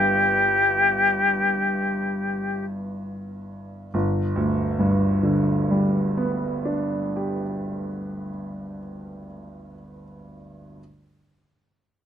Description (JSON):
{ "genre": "classical, impressionist duo for flute and grand piano", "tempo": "46-53 BPM", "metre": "4/4", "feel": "rubato", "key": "G major", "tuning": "A4 = 440 Hz", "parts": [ { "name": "silver concert flute", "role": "melody", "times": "0.0-2.6 s", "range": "G4", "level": "-19 LUFS", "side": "left 2 dB", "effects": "none" }, { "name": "warm grand piano", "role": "accompaniment", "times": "0.0-10.8 s", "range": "G1 to G4", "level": "-24 LUFS", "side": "right 1 dB", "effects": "none" } ], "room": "light reverb", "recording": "dark, warm production", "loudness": "-21 LUFS", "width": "side -9 dB against mid", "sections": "0.0-3.9 A section; 3.9-8.6 B section", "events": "slowing down 0.0-3.9", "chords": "0.0 G6; 3.9 G" }